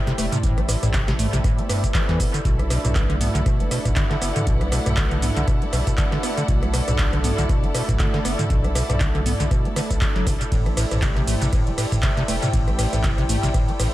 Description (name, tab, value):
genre	acid house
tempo	119 BPM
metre	4/4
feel	swing 56% on 16ths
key	B phrygian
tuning	A4 = 439 Hz
part	warm analog pad	sustained chords	0.0-13.9 s	A3 to C5	-31 LUFS	right 2 dB	chorus, sidechain pumping
part	dark chamber string section	texture	0.0-13.9 s	E4 to G5	-30 LUFS	left 1 dB	sidechain pumping
part	acid bass, square	riff	0.1-13.9 s	B1 to B3	-26 LUFS	equal	tube saturation, wide subtle chorus, sidechain pumping, dub echo
part	booming analog drum machine	drums	0.1-13.9 s	handclaps, hi-hat, ride cymbal, rim click, shaker, snare drum, toms	-26 LUFS	right 1 dB	dub echo
part	saturated sub bass	bass	0.2-13.9 s	E1 to E2	-25 LUFS	equal	sidechain pumping
part	electronic kick drum	drums	0.4-13.7 s	none	-22 LUFS	equal	none
part	swell	sound effects	1.6-2.5 s	none	-34 LUFS	right 1 dB	none
room	light reverb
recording	echo-heavy mix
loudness	-18 LUFS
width	side -15 dB against mid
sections	0.0-13.9 A section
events	swell 1.6-2.5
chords	0.0 Am7; 2.5 Bm7; 10.5 Am7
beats	| 0.43 0.94 1.44 1.95 | 2.45 2.96 3.46 3.96 | 4.47 4.97 5.48 5.98 | 6.49 6.99 7.49 8.00 | 8.50 9.01 9.51 10.01 | 10.52 11.02 11.53 12.03 | 12.54 13.04 13.54